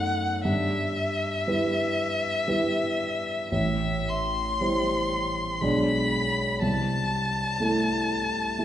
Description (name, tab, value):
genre	classical, romantic duo for violin and grand piano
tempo	52-62 BPM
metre	3/4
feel	rubato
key	unclear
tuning	A4 = 441 Hz
part	warm violin	melody	0.0-8.6 s	E5 to C6	-27 LUFS	left 2 dB	none
part	dark concert grand piano	accompaniment	0.0-8.6 s	A1 to D5	-26 LUFS	right 1 dB	none
room	wet recital hall reverb, RT60 1.5 s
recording	heard from further back in the room, nothing above 10.4 kHz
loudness	-24 LUFS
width	side -11 dB against mid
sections	0.0-8.6 A section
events	none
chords	0.5 Em/G; 3.5 Am7; 5.6 G#dim/B; 6.6 Am/C